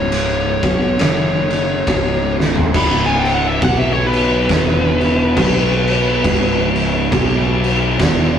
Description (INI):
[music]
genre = stoner and doom metal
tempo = 69 BPM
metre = 4/4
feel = swing 58% on 8ths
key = C# minor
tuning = A4 = 439 Hz
[part]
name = fuzz lead guitar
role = melody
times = 0.0-6.7 s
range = B4 to B5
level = -19 LUFS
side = left 1 dB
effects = wah, distortion
[part]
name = fuzz guitar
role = riff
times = 0.0-8.4 s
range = C#2 to B3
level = -20 LUFS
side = right 1 dB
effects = distortion
[part]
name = fuzz fingered electric bass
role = bass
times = 0.0-8.4 s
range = C#1 to B1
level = -21 LUFS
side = equal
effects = overdrive
[part]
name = oversized low-tuned drum kit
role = drums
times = 0.1-8.2 s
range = crash cymbal, kick drum, ride cymbal, snare drum, toms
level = -17 LUFS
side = equal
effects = none
[sound]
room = moderate studio reverb, RT60 0.5 s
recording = rough rehearsal-room recording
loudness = -13 LUFS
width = side -8 dB against mid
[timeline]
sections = 0.0-2.7 A section; 2.7-8.4 B section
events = drum fill 2.3-2.7; lead electric guitar solo 2.7-8.4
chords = 0.0 C#5; 1.0 F#5; 1.9 C#5; 3.6 B5; 4.5 E5; 5.4 B5; 6.2 C#5; 7.1 B5